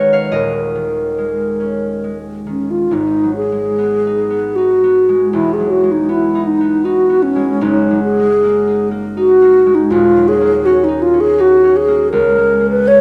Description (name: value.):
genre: classical, impressionist duo for alto flute and harp.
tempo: 66-82 BPM.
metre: 3/4.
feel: rubato.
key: G# minor.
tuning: A4 = 440 Hz.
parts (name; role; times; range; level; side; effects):
mellow hollow alto flute; melody; 0.0-13.0 s; C#4 to C#5; -14 LUFS; equal; none.
concert harp; accompaniment; 0.0-13.0 s; D#1 to B5; -21 LUFS; equal; none.
room: moderate recital hall reverb, RT60 1.8 s.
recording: none.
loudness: -14 LUFS.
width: mono.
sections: 0.0-2.9 A section; 2.9-13.0 B section.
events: none.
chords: 0.3 D#7sus4; 2.9 G#m7; 5.3 Emaj9; 7.6 F#69; 9.9 D#m7; 12.1 C#5.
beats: | 0.34 1.19 2.04 | 2.93 3.77 4.55 | 5.33 6.09 6.84 | 7.62 8.42 9.16 | 9.91 10.64 11.39 | 12.13 12.87.